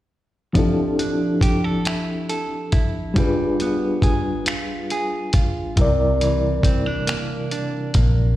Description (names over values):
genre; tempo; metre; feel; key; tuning
slow six-eight R&B; 46 BPM (dotted quarters); 6/8; straight; unclear; A4 = 439 Hz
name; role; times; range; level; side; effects
semi-hollow electric guitar; second line; 0.5-8.4 s; C3 to A4; -26 LUFS; right 4 dB; slapback echo
overdriven reed electric piano; accompaniment; 0.5-8.4 s; C3 to D5; -22 LUFS; left 1 dB; fast tremolo, slapback echo
dusty soul sampler-style drum kit; drums; 0.6-8.2 s; finger snaps, hi-hat, kick drum; -20 LUFS; equal; none
vintage muted fingered electric bass; bass; 5.8-8.3 s; Bb1 to C2; -20 LUFS; equal; none
room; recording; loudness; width
little or no reverb; live gig heard through the venue's PA, recital hall reverb; -18 LUFS; side -14 dB against mid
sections
0.6-8.4 A section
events
none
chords
0.6 Fmaj13; 3.2 G7b9; 5.8 C9